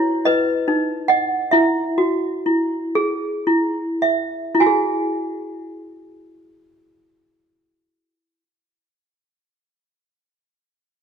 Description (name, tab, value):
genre	children's music, lullaby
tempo	33-51 BPM (dotted quarters)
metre	6/8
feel	rubato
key	E major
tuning	A4 = 440 Hz
part	toy piano	solo	0.0-9.4 s	D#4 to G#5	-17 LUFS	right 1 dB	none
room	moderate recital hall reverb, RT60 1.7 s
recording	dark, warm production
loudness	-17 LUFS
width	side -7 dB against mid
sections	0.0-4.6 A section; 4.6-8.2 B section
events	slowing down 0.0-4.6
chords	0.3 B; 1.5 Eadd9